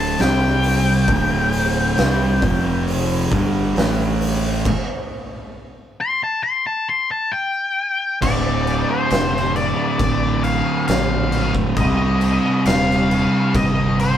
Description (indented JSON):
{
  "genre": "stoner and doom metal",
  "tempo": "67 BPM",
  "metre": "4/4",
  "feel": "straight",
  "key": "D phrygian",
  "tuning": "A4 = 440 Hz",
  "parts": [
    { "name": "octave-fuzz lead guitar", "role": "melody", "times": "0.0-14.2 s", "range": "C5 to C6", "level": "-21 LUFS", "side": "left 3 dB", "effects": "distortion" },
    { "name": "thick fuzz guitar", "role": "riff", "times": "0.0-14.2 s", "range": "D2 to C4", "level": "-23 LUFS", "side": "left 4 dB", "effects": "distortion" },
    { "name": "thick fuzz guitar", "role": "riff", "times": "0.0-14.2 s", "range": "D2 to C4", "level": "-21 LUFS", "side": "right 4 dB", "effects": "distortion" },
    { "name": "growling fingered electric bass", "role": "bass", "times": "0.0-14.1 s", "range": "D1 to C2", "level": "-24 LUFS", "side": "equal", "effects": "overdrive" },
    { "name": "oversized low-tuned drum kit", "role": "drums", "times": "0.2-14.2 s", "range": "crash cymbal, hi-hat, kick drum, snare drum", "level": "-22 LUFS", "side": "equal", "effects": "none" }
  ],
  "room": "moderate studio reverb, RT60 0.7 s",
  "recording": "band playing live in one room",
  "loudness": "-16 LUFS",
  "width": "side -10 dB against mid",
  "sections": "0.0-8.2 A section; 8.2-14.2 B section",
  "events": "lead electric guitar solo 0.0-8.2; stop 4.7-8.2",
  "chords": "0.2 C5; 1.1 D5; 2.4 F5; 3.3 G5; 3.8 A5; 4.7 N.C.; 8.2 Dm; 11.8 Cm"
}